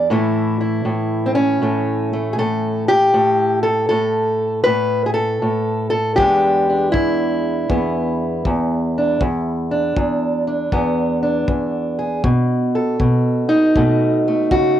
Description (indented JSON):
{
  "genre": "acoustic country blues, solo or duo",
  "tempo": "79 BPM",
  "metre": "4/4",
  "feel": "swing 66% on 8ths",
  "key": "E mixolydian",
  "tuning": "A4 = 440 Hz",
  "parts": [
    { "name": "fingerpicked steel-string acoustic guitar", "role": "melody", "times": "0.0-14.8 s", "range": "E2 to B4", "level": "-16 LUFS", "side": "equal", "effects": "none" },
    { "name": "kick drum", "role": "drums", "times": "6.2-14.7 s", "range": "none", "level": "-22 LUFS", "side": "left 1 dB", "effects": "cassette tape" }
  ],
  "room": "light reverb",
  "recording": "home recording on cassette",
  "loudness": "-16 LUFS",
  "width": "side -11 dB against mid",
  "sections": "0.0-14.8 A section",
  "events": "none",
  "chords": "0.1 A; 6.2 E7; 12.2 B7"
}